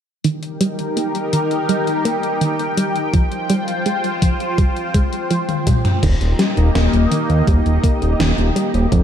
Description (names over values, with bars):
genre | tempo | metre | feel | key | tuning
synthwave | 83 BPM | 4/4 | straight | unclear | A4 = 440 Hz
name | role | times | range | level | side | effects
lush unison pad | sustained chords | 0.5-9.0 s | Bb3 to G5 | -21 LUFS | equal | chorus, phaser, sidechain pumping
soft round pluck | arpeggios | 0.2-9.0 s | Eb3 to Bb3 | -22 LUFS | right 2 dB | chorus, digital delay
gated 80s digital drum machine | drums | 0.2-9.0 s | crash cymbal, hi-hat, snare drum, toms | -23 LUFS | left 2 dB | gated reverb, gated reverb snare, overdrive
electronic kick drum | drums | 3.1-9.0 s | none | -16 LUFS | equal | overdrive
fat analog bass | bass | 6.0-9.0 s | Eb1 to Eb2 | -16 LUFS | equal | tube saturation
room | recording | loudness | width
moderate lush hall reverb, RT60 2.5 s | dark, warm production | -15 LUFS | side -9 dB against mid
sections
0.2-6.0 A section; 6.0-9.0 B section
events
filter sweep on synth arpeggio sound 0.2-6.0; drum fill 5.5-6.0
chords
0.2 Eb; 3.1 Fmadd9; 6.0 Eb